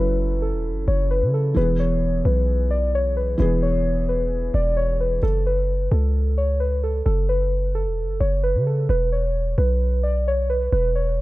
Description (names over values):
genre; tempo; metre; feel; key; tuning
hip hop, trap; 131 BPM; 4/4; half-time; F# minor; A4 = 443 Hz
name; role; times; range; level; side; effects
muted felt-like synth keys; melody; 0.0-11.2 s; A4 to D5; -24 LUFS; equal; chorus, tape echo
felt-muted upright piano; accompaniment; 0.0-5.2 s; E3 to G#4; -27 LUFS; right 2 dB; none
warm 808-style bass; bass; 0.0-11.2 s; E1 to C#3; -21 LUFS; equal; none
room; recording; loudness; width
little or no reverb; nothing above 10.4 kHz; -19 LUFS; side -18 dB against mid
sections
0.0-11.2 A section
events
none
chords
0.0 F#m; 1.6 E; 5.2 F#m; 8.9 E5